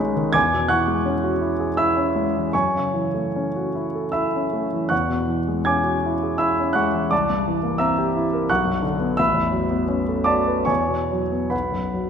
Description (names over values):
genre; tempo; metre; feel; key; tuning
classical, impressionist solo piano; 70-89 BPM; 3/4; rubato; unclear; A4 = 441 Hz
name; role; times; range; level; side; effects
warm concert grand piano; solo; 0.0-12.1 s; A1 to G#6; -19 LUFS; equal; none
room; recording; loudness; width
wet scoring stage reverb, RT60 1.7 s; minimal, uncompressed stereo recording; -19 LUFS; side -7 dB against mid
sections
0.0-12.1 A section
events
none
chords
0.4 E69; 2.5 F#m7; 4.9 E69; 7.1 C9; 8.5 Bmadd9; 9.2 A69; 10.7 Eadd9; 11.5 B5